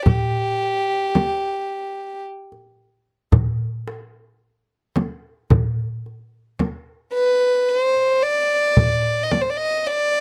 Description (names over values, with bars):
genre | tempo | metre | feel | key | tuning
Arabic maqam ensemble | 110 BPM (eighths) | 10/8 | straight | unclear | A4 = 439 Hz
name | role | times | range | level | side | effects
warm violin | melody | 0.0-10.2 s | G4 to Eb5 | -21 LUFS | equal | none
darbuka | percussion | 0.1-9.6 s | none | -23 LUFS | equal | none
frame drum | percussion | 0.1-9.6 s | none | -22 LUFS | equal | none
room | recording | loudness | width
light reverb | dark, warm production | -21 LUFS | mono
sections
0.0-10.2 A section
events
none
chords
none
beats
| 0.06 0.60 1.15 1.69 2.23 2.78 3.32 3.87 4.41 4.95 | 5.50 6.04 6.58 7.13 7.67 8.22 8.76 9.30 9.85